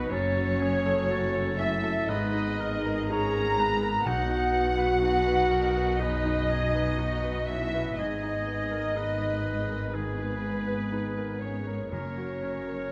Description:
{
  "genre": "cinematic",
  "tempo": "61 BPM",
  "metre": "4/4",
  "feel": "rubato",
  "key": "B major",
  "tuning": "A4 = 439 Hz",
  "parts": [
    { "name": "muted studio violin section", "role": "melody", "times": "0.0-12.9 s", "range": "B4 to A#5", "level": "-38 LUFS", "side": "equal", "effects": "none" },
    { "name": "clear clarinet", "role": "second line", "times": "0.0-12.9 s", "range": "B4 to A#5", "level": "-38 LUFS", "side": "equal", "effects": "none" },
    { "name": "hollow concert flute", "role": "second line", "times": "0.0-12.9 s", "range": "B4 to A#5", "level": "-37 LUFS", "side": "equal", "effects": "none" },
    { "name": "muted studio violin section", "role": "second line", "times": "0.0-12.9 s", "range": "B4 to A#5", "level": "-41 LUFS", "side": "equal", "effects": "none" },
    { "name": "warm oboe", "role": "second line", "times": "0.0-12.9 s", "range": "D#4 to C#5", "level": "-40 LUFS", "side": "equal", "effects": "none" },
    { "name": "bright concert grand piano", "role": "accompaniment", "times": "0.0-12.9 s", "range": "B1 to B4", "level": "-38 LUFS", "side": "equal", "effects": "none" },
    { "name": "muted studio viola section", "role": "accompaniment", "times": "0.0-12.9 s", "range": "G#3 to B4", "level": "-42 LUFS", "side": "equal", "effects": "none" },
    { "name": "warm French horn section", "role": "sustained chords", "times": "0.0-12.9 s", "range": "B3 to G#4", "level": "-34 LUFS", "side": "equal", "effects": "none" },
    { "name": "muted studio cello section", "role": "bass", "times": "0.0-12.9 s", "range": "F#2 to B2", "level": "-38 LUFS", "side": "equal", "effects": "none" },
    { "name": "muted studio double bass section", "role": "bass", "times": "0.0-12.9 s", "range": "F#1 to B1", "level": "-36 LUFS", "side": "equal", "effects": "none" },
    { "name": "timpani", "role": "percussion", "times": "4.1-5.5, 11.9-12.9 s", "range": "F#2 to B2", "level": "-43 LUFS", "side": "equal", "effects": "none" }
  ],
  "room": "moderate scoring stage reverb, RT60 1.7 s",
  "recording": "none",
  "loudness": "-28 LUFS",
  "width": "mono",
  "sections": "0.0-12.9 A section",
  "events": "none",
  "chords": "0.1 F#m; 2.1 G#madd9; 4.1 B; 8.0 G#madd9; 11.9 F#"
}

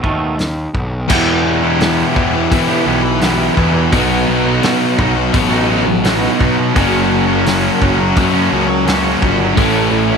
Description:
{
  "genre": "quiet-loud alternative rock",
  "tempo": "85 BPM",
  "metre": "4/4",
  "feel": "straight",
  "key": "E dorian",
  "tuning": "A4 = 440 Hz",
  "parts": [
    { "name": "twangy electric guitar", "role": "arpeggios", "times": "0.0-1.1 s", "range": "B2 to A3", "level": "-22 LUFS", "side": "right 4 dB", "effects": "analog chorus" },
    { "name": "fuzz picked electric bass", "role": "bass", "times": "0.0-10.2 s", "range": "F#1 to E3", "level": "-19 LUFS", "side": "equal", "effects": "overdrive" },
    { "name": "loose indie drum kit", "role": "drums", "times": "0.0-9.7 s", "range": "crash cymbal, hi-hat, kick drum, snare drum", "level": "-19 LUFS", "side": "equal", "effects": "none" },
    { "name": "string machine, violas", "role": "sustained chords", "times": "1.1-10.2 s", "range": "E4 to B5", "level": "-27 LUFS", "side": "equal", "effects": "none" },
    { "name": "crunchy overdriven guitar", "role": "riff", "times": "1.1-10.2 s", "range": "E2 to B3", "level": "-17 LUFS", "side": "right 1 dB", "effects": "none" },
    { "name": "thick fuzz guitar", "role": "riff", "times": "1.1-10.2 s", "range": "A2 to G4", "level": "-18 LUFS", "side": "left 15 dB", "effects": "distortion" },
    { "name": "thick fuzz guitar", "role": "riff", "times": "1.1-10.2 s", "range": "A2 to G4", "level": "-18 LUFS", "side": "right 14 dB", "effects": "distortion" }
  ],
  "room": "light reverb",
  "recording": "none",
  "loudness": "-12 LUFS",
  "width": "side -6 dB against mid",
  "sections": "0.0-1.1 A section; 1.1-10.2 B section",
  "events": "none",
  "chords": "0.0 B7; 1.1 Em; 3.9 B; 6.7 F#; 9.6 A"
}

